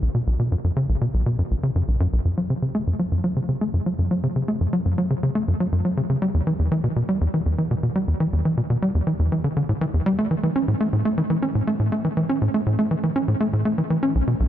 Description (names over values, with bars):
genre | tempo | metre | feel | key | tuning
ambient | 121 BPM | 4/4 | straight | unclear | A4 = 438 Hz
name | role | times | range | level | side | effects
tight sequencer bass | solo | 0.0-14.5 s | B1 to C#4 | -20 LUFS | equal | lush chorus, tape echo
room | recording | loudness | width
moderate huge ambient reverb, RT60 7.2 s | none | -20 LUFS | side -11 dB against mid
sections
0.0-2.3 A section; 2.3-14.5 B section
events
none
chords
none